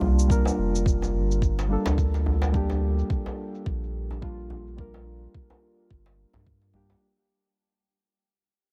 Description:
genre	organic downtempo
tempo	107 BPM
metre	4/4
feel	swing 57% on 16ths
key	G minor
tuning	A4 = 440 Hz
part	muted felt-like synth keys	accompaniment	0.0-7.0 s	G3 to Bb4	-32 LUFS	equal	chorus, sidechain pumping, digital delay
part	warm sub bass	bass	0.0-7.0 s	F1 to G2	-28 LUFS	equal	none
part	djembe	percussion	0.0-7.0 s	none	-35 LUFS	equal	none
part	cabasa	drums	0.2-7.0 s	none	-43 LUFS	equal	low-pass filter on snare, low-pass filter on perc, low-pass filter on hats, low-pass filter on room
part	electronic kick drum	drums	0.3-6.6 s	none	-28 LUFS	equal	none
room	little or no reverb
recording	none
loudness	-25 LUFS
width	mono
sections	0.0-7.0 A section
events	fade-out 0.0-7.0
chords	0.0 Gm

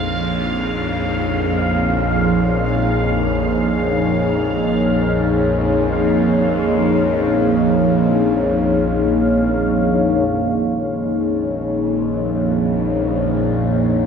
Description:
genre	dark ambient drone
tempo	free time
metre	none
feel	none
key	Bb minor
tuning	A4 = 440 Hz
part	dark analog pad	sustained chords	0.0-14.1 s	Bb3 to Db5	-18 LUFS	left 1 dB	chorus
part	bowed-like drone	drone	0.0-14.1 s	Bb1 to F2	-20 LUFS	right 1 dB	built-in reverb, phaser
part	bubbling stepped-filter texture	texture	0.0-10.3 s	F5	-26 LUFS	right 1 dB	chorus, built-in reverb
room	wet spring reverb, RT60 2.3 s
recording	none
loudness	-15 LUFS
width	side -6 dB against mid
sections	0.0-10.3 A section; 10.3-14.1 B section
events	none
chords	0.0 Bbm7

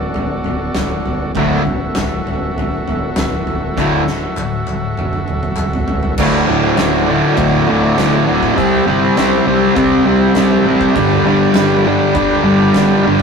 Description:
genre	garage rock duo or trio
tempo	100 BPM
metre	4/4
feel	straight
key	D mixolydian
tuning	A4 = 441 Hz
part	overdriven combo organ	sustained chords	0.0-13.2 s	F#4 to E5	-23 LUFS	equal	none
part	growling fingered electric bass	bass	0.0-13.2 s	D1 to G2	-24 LUFS	equal	overdrive
part	oversized low-tuned drum kit	drums	0.1-13.2 s	crash cymbal, kick drum, snare drum, toms	-20 LUFS	equal	none
part	group handclap	percussion	0.8-5.7 s	none	-31 LUFS	left 3 dB	none
part	fuzz guitar	riff	1.4-13.2 s	D2 to C4	-12 LUFS	equal	distortion
room	moderate stone room reverb, RT60 1.3 s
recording	rough rehearsal-room recording, tube saturation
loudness	-12 LUFS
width	side -5 dB against mid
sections	0.0-6.2 A section; 6.2-13.2 B section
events	drum fill 3.8-6.2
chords	0.0 D; 8.6 C; 11.0 G

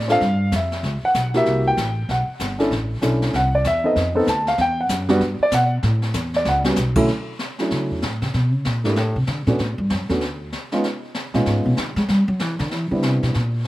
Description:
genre	jazz piano trio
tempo	192 BPM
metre	4/4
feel	swing 62% on 8ths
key	unclear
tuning	A4 = 442 Hz
part	dark grand piano	melody	0.0-13.3 s	D2 to A5	-20 LUFS	equal	none
part	upright bass	bass	0.0-13.7 s	G1 to G#3	-22 LUFS	equal	none
part	jazz brush drum kit	drums	0.0-13.7 s	brushed snare drum, crash cymbal, hi-hat, kick drum, snare drum	-28 LUFS	left 1 dB	none
room	little or no reverb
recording	none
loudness	-18 LUFS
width	side -16 dB against mid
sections	0.0-7.1 A section; 7.1-13.7 A section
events	grand piano solo 0.0-7.1; drum fill 6.5-6.8; upright bass solo 7.1-13.7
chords	0.0 Bbmaj7 (rootless); 0.8 C#m7; 1.5 C7#11; 2.1 Bm11; 3.3 C(#11); 4.0 F7; 4.6 Emadd9; 5.8 A69; 7.1 Dmaj7; 8.3 C#7(no3); 9.0 Csus2; 9.6 Bm7 (rootless); 10.8 C#9; 12.1 Cmaj7

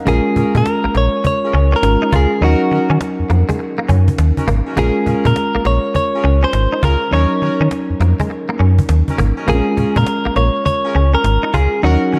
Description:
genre	R&B, new jack swing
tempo	102 BPM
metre	4/4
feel	swing 65% on 16ths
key	Bb minor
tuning	A4 = 440 Hz
part	FM electric piano	accompaniment	0.0-12.2 s	F3 to Bb4	-22 LUFS	equal	chorus
part	direct-recorded clean electric guitar	melody	0.1-12.2 s	Gb4 to Db5	-21 LUFS	equal	delay
part	direct-recorded clean electric guitar	riff	0.1-12.2 s	Ab3 to F4	-27 LUFS	equal	ensemble chorus
part	warm horn section	stabs	0.1-12.2 s	Db4 to Bb4	-31 LUFS	equal	none
part	slap-like FM bass	bass	0.1-12.2 s	Ab1 to Eb3	-16 LUFS	equal	none
part	cajon	drums	0.1-12.2 s	none	-24 LUFS	equal	none
room	moderate echo chamber reverb, RT60 1.6 s, studio ambience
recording	dark, warm production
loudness	-15 LUFS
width	mono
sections	0.1-12.2 A section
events	none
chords	0.1 Bbm7; 2.4 Ebm7; 4.8 Bbm7; 7.1 Ebm7; 9.5 Bbm7

